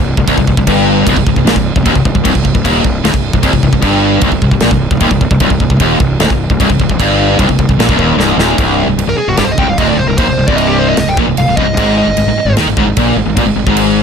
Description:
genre	heavy metal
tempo	151 BPM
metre	4/4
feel	straight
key	C minor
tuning	A4 = 442 Hz
part	distorted electric guitar	riff	0.0-14.0 s	C2 to Eb3	-15 LUFS	left 13 dB	overdrive
part	distorted electric guitar	riff	0.0-14.0 s	C2 to Eb3	-15 LUFS	right 12 dB	overdrive
part	fuzz guitar	riff	0.0-14.0 s	C2 to Eb3	-19 LUFS	left 1 dB	none
part	fuzz fingered electric bass	bass	0.0-14.0 s	C1 to Eb2	-16 LUFS	equal	overdrive
part	modern studio drum kit	drums	0.2-13.9 s	crash cymbal, kick drum, snare drum	-15 LUFS	equal	none
part	dark smooth lead guitar	melody	9.1-12.5 s	F#4 to G5	-16 LUFS	equal	overdrive, ping-pong delay
room	light reverb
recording	none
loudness	-9 LUFS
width	side -7 dB against mid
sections	0.0-8.6 A section; 8.6-14.0 B section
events	drum fill 8.2-8.6; lead electric guitar solo 8.6-14.0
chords	0.0 Cm; 11.8 Ab5

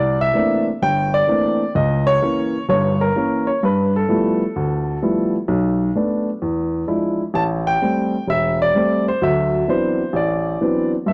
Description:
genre	solo jazz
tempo	129 BPM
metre	4/4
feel	swing 68% on 8ths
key	unclear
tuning	A4 = 440 Hz
part	warm upright piano	solo	0.0-11.1 s	E1 to A5	-19 LUFS	equal	none
room	moderate plate reverb, RT60 3.0 s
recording	dark, warm production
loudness	-19 LUFS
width	mono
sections	0.0-11.1 A section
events	none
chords	0.0 C13; 1.7 C#dim7; 3.6 G13; 5.5 Bm7; 6.4 E7b9; 7.3 Am7; 9.2 D13

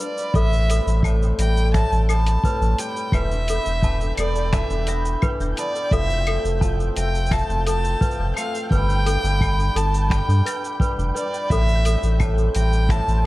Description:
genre	folktronica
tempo	86 BPM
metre	4/4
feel	straight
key	A minor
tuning	A4 = 440 Hz
part	warm violin	melody	0.0-13.3 s	D5 to A5	-27 LUFS	equal	digital delay
part	toy piano	second line	0.0-13.2 s	A4 to A5	-30 LUFS	equal	digital delay
part	hammered dulcimer	arpeggios	0.0-13.3 s	A2 to B4	-28 LUFS	equal	digital delay
part	lo-fi sampler-style drum kit	drums	0.0-13.2 s	claves, finger snaps, hi-hat, shaker	-32 LUFS	left 1 dB	none
part	warm sub bass	bass	0.3-13.3 s	E1 to G2	-20 LUFS	equal	tube saturation
part	kick drum	drums	0.3-13.0 s	none	-23 LUFS	equal	none
part	flickering grainy texture	texture	0.8-13.3 s	G5 to G6	-38 LUFS	right 2 dB	built-in reverb
room	small room ambience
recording	dark, warm production, vinyl crackle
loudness	-18 LUFS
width	side -18 dB against mid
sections	0.3-13.3 A section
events	none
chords	0.3 Am7; 3.1 E7sus4; 5.9 Fmaj7; 8.7 G7; 11.5 Am7

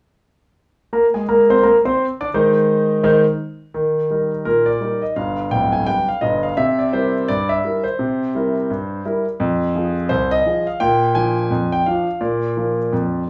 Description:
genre	ragtime piano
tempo	85 BPM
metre	2/4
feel	swing 60% on 16ths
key	Eb major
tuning	A4 = 440 Hz
part	warm concert grand piano	solo	0.9-13.3 s	D1 to D6	-18 LUFS	equal	none
room	moderate small room reverb, RT60 0.5 s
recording	small room reverb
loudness	-18 LUFS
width	mono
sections	0.9-3.8 A section; 3.8-13.3 B section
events	none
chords	0.9 Abadd9; 2.3 Ab/Eb; 3.8 Eb; 5.2 G; 6.6 C7; 9.4 Fm; 10.8 Bb

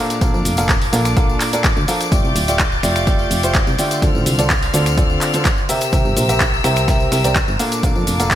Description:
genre	piano house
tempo	126 BPM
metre	4/4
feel	straight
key	F major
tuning	A4 = 439 Hz
part	rich chamber string section	sustained chords	0.0-8.4 s	Bb3 to A6	-24 LUFS	left 2 dB	sidechain pumping
part	clear grand piano	riff	0.0-8.3 s	Bb2 to F5	-20 LUFS	right 1 dB	sidechain pumping, digital delay
part	dusty soul sampler-style drum kit	drums	0.1-8.4 s	hi-hat, snare drum	-30 LUFS	equal	none
part	punchy analog drum machine	drums	0.1-8.4 s	finger snaps, handclaps, hi-hat, shaker	-22 LUFS	equal	none
part	tambourine	percussion	0.1-8.4 s	none	-32 LUFS	left 5 dB	none
part	solid FM bass	bass	0.2-8.4 s	D1 to F2	-20 LUFS	equal	sidechain pumping
part	electronic kick drum	drums	0.2-8.4 s	none	-18 LUFS	equal	none
room	light reverb, digital ambience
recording	bright 1980s-style digital production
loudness	-14 LUFS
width	side -12 dB against mid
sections	0.0-8.4 A section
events	none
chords	0.0 Bbmaj7; 2.1 F69; 4.0 Dm7; 5.7 C7; 7.6 Bbmaj7

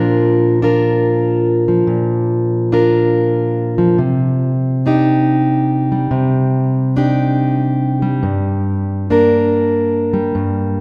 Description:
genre	folk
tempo	114 BPM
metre	4/4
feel	swing 62% on 8ths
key	C minor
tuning	A4 = 439 Hz
part	fingerpicked plugged-in steel-string acoustic guitar	solo	0.0-10.8 s	G2 to Bb4	-15 LUFS	equal	none
room	wet concert hall reverb, RT60 2.3 s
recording	none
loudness	-15 LUFS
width	mono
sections	0.0-10.8 A section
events	none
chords	0.0 Bb; 4.0 Cmadd9; 8.2 Gm

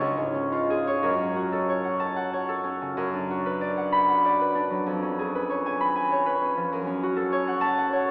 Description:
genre	classical, solo harp piece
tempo	64 BPM (dotted quarters)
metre	6/8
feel	uneven beats, rubato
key	F# minor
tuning	A4 = 441 Hz
part	concert harp	solo	0.0-8.1 s	C#2 to B5	-26 LUFS	equal	none
room	wet church reverb, RT60 3.3 s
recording	heard from further back in the room, AM radio sound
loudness	-26 LUFS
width	mono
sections	0.0-1.0 A section; 1.0-8.1 B section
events	none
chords	0.0 C#; 1.0 F#m; 3.0 Bm/F#; 4.9 C#7/E#; 6.7 F#m

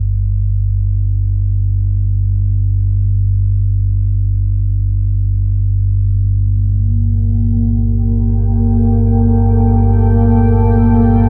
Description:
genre	dark ambient drone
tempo	free time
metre	none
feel	none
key	G minor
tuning	A4 = 440 Hz
part	deep rumbling drone	drone	0.0-11.3 s	G1 to G2	-15 LUFS	equal	built-in reverb
part	deep dark ambient pad	sustained chords	6.9-11.3 s	Bb3 to G5	-18 LUFS	equal	chorus, built-in reverb
room	wet cathedral reverb, RT60 5.6 s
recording	none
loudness	-14 LUFS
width	mono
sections	0.0-11.3 A section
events	none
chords	0.0 Gmadd9

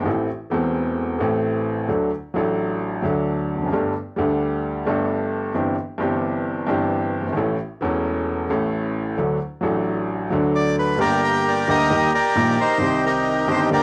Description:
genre	tango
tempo	132 BPM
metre	4/4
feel	rubato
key	unclear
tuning	A4 = 441 Hz
part	clear upright piano	accompaniment	0.0-13.8 s	E1 to A4	-23 LUFS	equal	cassette tape
part	bandoneon	melody	10.6-13.8 s	Eb4 to G5	-21 LUFS	equal	cassette tape, analog delay
room	wet studio reverb, RT60 0.6 s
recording	home recording on cassette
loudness	-22 LUFS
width	mono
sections	0.0-11.0 A section; 11.0-13.8 B section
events	none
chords	0.1 Am; 1.9 D; 3.7 Gsus2; 5.5 Cadd9/G; 7.4 A; 9.2 D; 11.0 Gm; 11.9 Eb; 12.8 Cm

